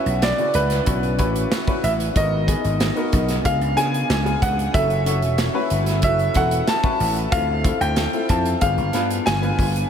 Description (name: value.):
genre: polished 1980s jazz-funk pop.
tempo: 93 BPM.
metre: 4/4.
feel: straight.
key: unclear.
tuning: A4 = 441 Hz.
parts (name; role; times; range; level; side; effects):
bright baby grand piano; melody; 0.0-9.9 s; B4 to A5; -23 LUFS; equal; diffuse ambient delay.
warm grand piano; accompaniment; 0.0-9.9 s; C#3 to D5; -25 LUFS; left 2 dB; lush chorus.
vintage slap bass; bass; 0.1-9.8 s; E1 to C#3; -23 LUFS; equal; none.
modern studio drum kit; drums; 0.1-9.9 s; hi-hat, kick drum, snare drum; -24 LUFS; right 1 dB; none.
room: moderate huge ambient reverb, RT60 5.9 s.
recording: dreamy mix soaked in reverb.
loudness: -18 LUFS.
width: side -8 dB against mid.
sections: 0.0-9.9 A section.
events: none.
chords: 0.0 Dmaj13; 2.2 G#m7; 3.5 C#7b9; 4.7 F#m7; 7.3 Dm7; 8.6 G7b9.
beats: 0.22 0.87 1.51 | 2.16 2.81 3.45 4.10 | 4.74 5.39 6.03 6.68 | 7.32 7.97 8.61 9.26.